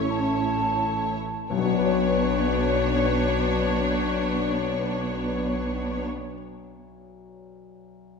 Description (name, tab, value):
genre	cinematic, emotional film score for orchestra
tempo	43 BPM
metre	4/4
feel	rubato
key	B minor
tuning	A4 = 441 Hz
part	clear symphonic violin section	melody	0.0-6.0 s	C#5	-34 LUFS	left 4 dB	none
part	bright clarinet	second line	0.0-6.0 s	C#4 to B4	-36 LUFS	equal	none
part	mellow hollow silver concert flute	second line	0.0-1.5 s	A5 to C#6	-28 LUFS	right 1 dB	none
part	rich symphonic violin section	second line	0.0-6.0 s	D4 to C#5	-32 LUFS	left 2 dB	none
part	rich studio viola section	accompaniment	0.0-6.0 s	A3 to C#5	-34 LUFS	right 1 dB	none
part	warm concert grand piano	accompaniment	0.0-8.2 s	B1 to E5	-32 LUFS	left 7 dB	none
part	dark French horn section	sustained chords	0.0-6.0 s	A3 to C#5	-32 LUFS	left 5 dB	none
part	concert harp	arpeggios	0.0-6.4 s	B2 to C#5	-31 LUFS	left 8 dB	none
part	rich symphonic double bass section	bass	0.0-6.0 s	A1 to B1	-31 LUFS	right 1 dB	none
part	warm symphonic cello section	bass	0.0-6.0 s	B3 to C#4	-31 LUFS	right 2 dB	none
room	wet scoring stage reverb, RT60 2.0 s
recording	minimal, uncompressed stereo recording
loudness	-22 LUFS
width	side -5 dB against mid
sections	0.0-1.5 A section; 1.5-7.1 B section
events	slowing down 0.0-1.5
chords	0.0 A; 1.5 Bmadd9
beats	0.11 | 1.51 2.90 4.30 5.70